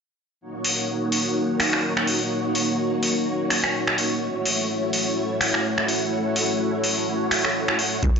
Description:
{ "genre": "acid house", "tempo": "126 BPM", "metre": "4/4", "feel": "swing 56% on 16ths", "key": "Eb minor pentatonic", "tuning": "A4 = 439 Hz", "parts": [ { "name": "string machine, full ensemble", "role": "sustained chords", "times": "0.4-8.2 s", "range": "A3 to Db5", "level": "-23 LUFS", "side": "equal", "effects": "ensemble chorus, sidechain pumping" }, { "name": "electro analog drum machine", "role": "drums", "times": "0.6-8.2 s", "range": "finger snaps, hi-hat", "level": "-23 LUFS", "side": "equal", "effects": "none" }, { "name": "acid bass, saw", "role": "riff", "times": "8.0-8.1 s", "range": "Eb2", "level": "-25 LUFS", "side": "right 1 dB", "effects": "tube saturation, wide subtle chorus, sidechain pumping" }, { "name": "electronic kick drum", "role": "drums", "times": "8.0-8.1 s", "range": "none", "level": "-20 LUFS", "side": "equal", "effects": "none" } ], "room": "moderate lush hall reverb, RT60 1.8 s, digital ambience", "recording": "dry, gritty hardware recording, nothing above 7.5 kHz", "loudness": "-20 LUFS", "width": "side -6 dB against mid", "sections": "0.4-8.2 A section", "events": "none", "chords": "0.4 Ebm7; 4.2 Gbm7" }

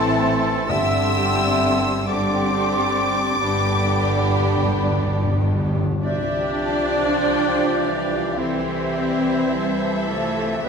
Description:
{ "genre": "classical, slow romantic movement for symphony orchestra", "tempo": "41-54 BPM", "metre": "4/4", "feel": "rubato", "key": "C major", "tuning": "A4 = 440 Hz", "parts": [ { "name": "rich studio violin section", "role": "melody", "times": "0.0-10.7 s", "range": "A4 to E6", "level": "-28 LUFS", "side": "left 5 dB", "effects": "none" }, { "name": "clear clarinet", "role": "second line", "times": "0.0-10.7 s", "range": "A4 to E5", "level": "-29 LUFS", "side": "left 2 dB", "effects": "none" }, { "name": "clear oboe", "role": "second line", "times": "0.0-10.7 s", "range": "E4 to E5", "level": "-31 LUFS", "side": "right 2 dB", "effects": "none" }, { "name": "mellow small flute group", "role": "second line", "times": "0.0-10.7 s", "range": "D5 to C6", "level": "-31 LUFS", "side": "right 3 dB", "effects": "none" }, { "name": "warm studio violin section", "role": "second line", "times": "0.0-10.7 s", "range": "C4 to A5", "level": "-28 LUFS", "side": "left 2 dB", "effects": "none" }, { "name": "mellow bassoon", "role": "accompaniment", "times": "0.0-10.7 s", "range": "D3 to A3", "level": "-30 LUFS", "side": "right 1 dB", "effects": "none" }, { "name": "warm studio viola section", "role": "accompaniment", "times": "0.0-10.7 s", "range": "G3 to D4", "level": "-26 LUFS", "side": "right 1 dB", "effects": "none" }, { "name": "mellow French horn section", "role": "sustained chords", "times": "0.0-10.6 s", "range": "C3 to G4", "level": "-28 LUFS", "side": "left 3 dB", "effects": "none" }, { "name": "mellow trombone section", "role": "sustained chords", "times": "0.0-10.7 s", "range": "D3 to A3", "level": "-31 LUFS", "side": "right 4 dB", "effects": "none" }, { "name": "rich studio cello section", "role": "bass", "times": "0.0-10.7 s", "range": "G2 to G3", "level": "-29 LUFS", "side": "right 2 dB", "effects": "none" }, { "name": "warm studio double bass section", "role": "bass", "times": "0.0-10.7 s", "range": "G1 to C2", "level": "-28 LUFS", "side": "right 2 dB", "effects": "none" }, { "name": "timpani", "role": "percussion", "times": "0.7-7.8 s", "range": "G2 to C3", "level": "-26 LUFS", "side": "left 1 dB", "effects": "none" } ], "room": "wet recital hall reverb, RT60 1.5 s", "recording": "minimal, uncompressed stereo recording", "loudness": "-18 LUFS", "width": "side -6 dB against mid", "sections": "0.0-6.0 A section; 6.0-10.7 B section", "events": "timpani fill 3.4-6.0", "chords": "0.0 Am; 0.7 Gsus4; 3.4 G; 6.0 C" }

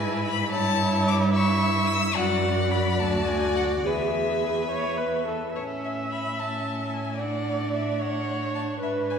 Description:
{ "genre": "quick classical-period movement for string quartet", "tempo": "73 BPM (dotted quarters)", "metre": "6/8", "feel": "straight", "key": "A major", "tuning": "A4 = 439 Hz", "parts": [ { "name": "rich violin", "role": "melody", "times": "0.0-9.2 s", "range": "C#5 to E6", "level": "-29 LUFS", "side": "left 5 dB", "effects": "none" }, { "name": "clear violin", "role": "second line", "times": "0.0-9.2 s", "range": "C#4 to E5", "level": "-31 LUFS", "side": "left 1 dB", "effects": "none" }, { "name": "rich viola", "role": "accompaniment", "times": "0.0-9.2 s", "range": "E4 to E5", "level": "-28 LUFS", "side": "right 2 dB", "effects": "none" }, { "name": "rich cello", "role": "bass", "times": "0.0-9.2 s", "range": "D2 to A2", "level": "-28 LUFS", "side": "right 2 dB", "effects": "none" } ], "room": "wet concert hall reverb, RT60 2.4 s", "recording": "heard from further back in the room", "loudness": "-23 LUFS", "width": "side -7 dB against mid", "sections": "0.0-5.6 A section; 5.6-9.2 B section", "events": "none", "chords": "0.0 E/G#; 0.5 A7/G; 2.2 D/F#; 3.0 D; 3.9 E; 5.6 A; 7.2 D/A" }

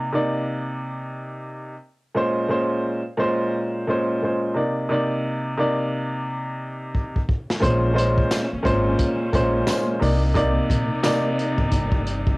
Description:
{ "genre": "hip hop, boom-bap hip-hop", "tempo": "88 BPM", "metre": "4/4", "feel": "swing 62% on 16ths", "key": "unclear", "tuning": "A4 = 440 Hz", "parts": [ { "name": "warm upright piano", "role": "accompaniment", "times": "0.0-12.4 s", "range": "Bb2 to D5", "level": "-22 LUFS", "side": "equal", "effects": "cassette tape, high-pass filter, low-pass filter" }, { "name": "crunchy breakbeat drum kit", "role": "drums", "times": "6.9-12.4 s", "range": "hi-hat, kick drum, snare drum", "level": "-24 LUFS", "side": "equal", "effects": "none" }, { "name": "warm studio string section", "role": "sustained chords", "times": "7.6-12.4 s", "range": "C3 to D5", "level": "-30 LUFS", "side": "left 1 dB", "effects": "high-pass filter, low-pass filter, cassette tape" }, { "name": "upright bass", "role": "bass", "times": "7.6-12.4 s", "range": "G1 to C2", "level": "-23 LUFS", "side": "equal", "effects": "none" }, { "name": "tambourine", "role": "percussion", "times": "8.3-11.2 s", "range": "none", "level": "-37 LUFS", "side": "left 5 dB", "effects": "none" } ], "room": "light reverb", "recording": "home recording on cassette", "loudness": "-20 LUFS", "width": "side -24 dB against mid", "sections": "0.0-7.6 A section; 7.6-12.4 B section", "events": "drum fill 6.9-7.6", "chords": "0.0 Cm9; 2.2 Bbm9; 4.6 Cm9; 7.6 Bbm9; 10.0 Cm9" }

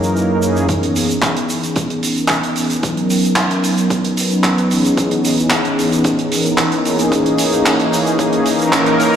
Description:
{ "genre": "nu-disco, nu disco", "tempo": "112 BPM", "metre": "4/4", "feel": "straight", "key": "C# dorian", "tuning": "A4 = 440 Hz", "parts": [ { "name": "warm analog pad", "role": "accompaniment", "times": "0.0-9.2 s", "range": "F#2 to B4", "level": "-15 LUFS", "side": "equal", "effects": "chorus, tape echo" }, { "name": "damped 70s drum kit", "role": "drums", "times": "0.0-9.1 s", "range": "handclaps, hi-hat, shaker", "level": "-19 LUFS", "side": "right 1 dB", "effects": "high-pass filter on hats, studio reverb, high-pass filter on perc, high-pass filter on snare, high-pass filter on room" }, { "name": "electronic kick drum", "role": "drums", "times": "0.7-8.8 s", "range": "none", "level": "-23 LUFS", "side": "equal", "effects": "high-pass filter on kick, studio reverb" } ], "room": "moderate plate reverb, RT60 2.8 s", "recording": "played on a big sound system in a bare room, large studio reverb", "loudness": "-13 LUFS", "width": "side -8 dB against mid", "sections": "0.7-9.2 A section", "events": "build-up 0.7-9.2; filter sweep on analog synth pad 0.7-9.2", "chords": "0.0 F#13; 0.7 C#m7; 2.8 Bmaj9; 4.7 C#m7; 6.9 C#m69/E" }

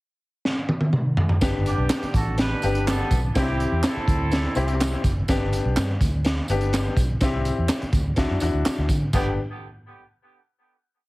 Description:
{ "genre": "uptempo 1960s-style soul", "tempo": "125 BPM", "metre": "4/4", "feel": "straight", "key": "G major", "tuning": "A4 = 441 Hz", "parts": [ { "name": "crunchy breakbeat drum kit", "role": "drums", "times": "0.5-9.2 s", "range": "crash cymbal, hi-hat, kick drum, snare drum, toms", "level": "-23 LUFS", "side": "equal", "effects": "none" }, { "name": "warm upright piano", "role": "accompaniment", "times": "1.4-9.4 s", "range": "B3 to G4", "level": "-27 LUFS", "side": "left 4 dB", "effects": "none" }, { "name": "vintage muted fingered electric bass", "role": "bass", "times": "1.4-9.4 s", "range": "F#1 to D3", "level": "-25 LUFS", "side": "equal", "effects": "none" }, { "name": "tambourine and handclaps", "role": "percussion", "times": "1.4-9.4 s", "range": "none", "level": "-35 LUFS", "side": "right 3 dB", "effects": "none" }, { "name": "mellow horn section", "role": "second line", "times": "1.7-4.8, 9.1-9.3 s", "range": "D3 to B4", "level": "-29 LUFS", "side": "right 2 dB", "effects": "tape echo" } ], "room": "little or no reverb", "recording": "heavily compressed radio sound, multiband compression", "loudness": "-20 LUFS", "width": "side -20 dB against mid", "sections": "0.0-1.4 pickup bar; 1.4-9.1 A section; 9.1-11.1 final chord", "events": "drum fill 0.4-1.4", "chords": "0.0 N.C.; 1.4 G; 3.4 C; 5.3 G; 7.2 C; 8.2 Dadd9; 9.1 G" }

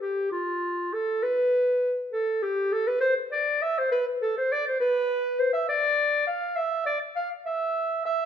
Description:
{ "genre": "classical, baroque-style fantasia for unaccompanied clarinet", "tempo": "67 BPM (dotted quarters)", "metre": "6/8", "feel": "rubato", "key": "unclear", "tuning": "A4 = 441 Hz", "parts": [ { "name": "mellow clarinet", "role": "solo", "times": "0.0-8.3 s", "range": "F4 to F5", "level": "-24 LUFS", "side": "equal", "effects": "none" } ], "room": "wet recital hall reverb, RT60 1.5 s", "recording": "minimal, uncompressed stereo recording", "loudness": "-24 LUFS", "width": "side -8 dB against mid", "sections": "0.0-8.3 A section", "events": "none", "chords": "none" }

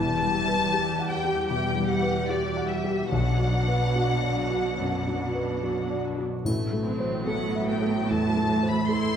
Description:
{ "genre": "cinematic, emotional film score for orchestra", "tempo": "70-79 BPM", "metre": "4/4", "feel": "rubato", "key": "unclear", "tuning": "A4 = 436 Hz", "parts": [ { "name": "warm symphonic violin section", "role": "melody", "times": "0.0-9.2 s", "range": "D5 to C6", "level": "-29 LUFS", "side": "left 4 dB", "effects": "none" }, { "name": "dark grand piano", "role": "accompaniment", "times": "0.0-9.2 s", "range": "A1 to F#5", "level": "-28 LUFS", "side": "left 1 dB", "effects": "none" }, { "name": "warm symphonic viola section", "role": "accompaniment", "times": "0.0-9.2 s", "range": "F#3 to G4", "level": "-31 LUFS", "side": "right 3 dB", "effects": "none" }, { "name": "concert harp", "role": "arpeggios", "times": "0.0-9.2 s", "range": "A2 to A4", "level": "-33 LUFS", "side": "left 5 dB", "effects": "none" }, { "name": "dark symphonic double bass section", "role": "bass", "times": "0.0-7.2 s", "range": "E1 to B1", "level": "-34 LUFS", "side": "right 2 dB", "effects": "none" }, { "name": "warm symphonic cello section", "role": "bass", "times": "0.0-9.2 s", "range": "E2 to B2", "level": "-30 LUFS", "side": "right 4 dB", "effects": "none" }, { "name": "triangle", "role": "percussion", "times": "6.5-8.1 s", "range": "none", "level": "-45 LUFS", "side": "right 1 dB", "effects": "none" } ], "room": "moderate scoring stage reverb, RT60 1.8 s", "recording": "none", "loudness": "-23 LUFS", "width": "side -8 dB against mid", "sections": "0.0-9.2 A section", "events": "none", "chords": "0.0 Emadd9; 3.1 Bm; 6.5 Am" }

